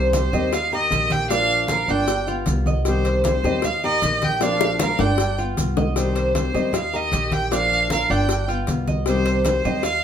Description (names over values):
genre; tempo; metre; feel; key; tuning
latin, Cuban son and guajira; 155 BPM; 4/4; straight; C minor; A4 = 438 Hz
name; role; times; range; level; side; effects
warm violin; melody; 0.0-10.0 s; C5 to G5; -23 LUFS; right 1 dB; none
nylon-string guitar; accompaniment; 0.0-9.9 s; C3 to G4; -26 LUFS; left 3 dB; none
Cuban tres; arpeggios; 0.0-10.0 s; D4 to Eb5; -26 LUFS; right 4 dB; none
upright bass; bass; 0.0-10.0 s; G1 to Eb2; -25 LUFS; equal; none
congas; percussion; 0.1-10.0 s; none; -28 LUFS; left 1 dB; none
cowbell and bongos; percussion; 0.1-10.0 s; none; -27 LUFS; left 6 dB; none
maracas; percussion; 0.1-10.0 s; none; -36 LUFS; right 3 dB; none
room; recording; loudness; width
moderate studio reverb, RT60 0.8 s; minimal, uncompressed stereo recording; -18 LUFS; side -8 dB against mid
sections
0.0-10.0 A section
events
drum fill 4.4-6.0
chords
0.0 Cm; 0.5 Eb; 1.3 Bb; 2.1 G7; 2.9 Cm; 3.6 Eb; 4.4 Bb; 5.2 G7; 6.0 Cm; 6.7 Eb; 7.5 Bb; 8.3 G7; 9.1 Cm